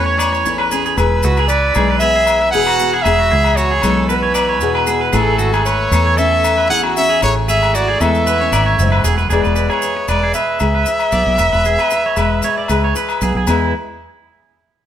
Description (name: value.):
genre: highlife guitar band.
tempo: 115 BPM.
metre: 4/4.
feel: straight.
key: E mixolydian.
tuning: A4 = 440 Hz.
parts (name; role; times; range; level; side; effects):
clear trumpet; melody; 0.0-12.9 s; A4 to F#5; -17 LUFS; equal; none.
nylon-string guitar; accompaniment; 0.0-13.7 s; E2 to G#4; -22 LUFS; left 6 dB; none.
accordion; sustained chords; 0.0-13.7 s; G#4 to E6; -27 LUFS; equal; none.
electric guitar at the edge of break-up; arpeggios; 0.0-13.7 s; E4 to E5; -20 LUFS; right 5 dB; spring reverb.
fingered electric bass; bass; 0.0-13.7 s; E1 to E2; -18 LUFS; equal; none.
agogo bells; percussion; 0.2-13.6 s; none; -23 LUFS; left 5 dB; none.
maracas; percussion; 0.2-13.7 s; none; -30 LUFS; left 3 dB; none.
room: moderate stone room reverb, RT60 1.0 s.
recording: band playing live in one room.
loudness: -12 LUFS.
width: side -10 dB against mid.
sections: 0.0-9.3 A section; 9.3-13.5 B section; 13.5-14.9 C section.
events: none.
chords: 0.0 Amaj7; 1.0 E.